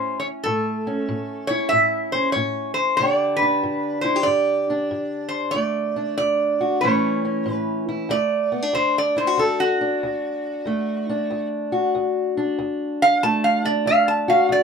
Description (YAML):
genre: acoustic country blues, solo or duo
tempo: 94 BPM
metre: 4/4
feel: swing 65% on 8ths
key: D major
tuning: A4 = 438 Hz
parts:
  - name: lap resonator guitar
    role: melody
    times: 0.0-14.6 s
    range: F#4 to A5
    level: -20 LUFS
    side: right 1 dB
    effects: none
  - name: fingerpicked steel-string acoustic guitar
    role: accompaniment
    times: 0.0-14.6 s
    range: D2 to G4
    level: -23 LUFS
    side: left 1 dB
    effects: none
room: wet booth ambience, RT60 0.2 s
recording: minimal, uncompressed stereo recording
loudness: -19 LUFS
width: side -6 dB against mid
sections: 0.0-8.1 A section; 8.1-14.6 B section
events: resonator guitar played with a steel bar solo 8.1-14.6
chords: 0.0 A; 3.0 G; 5.5 D; 6.8 A; 8.1 D